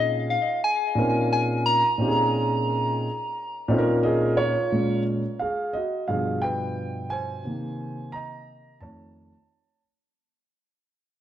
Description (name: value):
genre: hip hop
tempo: 88 BPM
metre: 4/4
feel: swing 65% on 16ths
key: Bb minor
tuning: A4 = 445 Hz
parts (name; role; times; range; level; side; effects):
- soft struck synth lead; melody; 0.0-4.0 s; Eb5 to Bb5; -24 LUFS; left 1 dB; chorus, tape echo
- dark concert grand piano; accompaniment; 0.0-9.8 s; F2 to Bb5; -24 LUFS; equal; none
room: moderate plate reverb, RT60 3.0 s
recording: echo-heavy mix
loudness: -22 LUFS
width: side -11 dB against mid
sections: 0.0-4.7 A section; 4.7-10.2 B section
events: fade-out 4.7-10.2; grand piano solo 4.7-10.2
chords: 0.0 Bbm11; 4.7 Bbm7; 6.1 G7b9; 7.5 Abadd9/C; 8.8 Faug7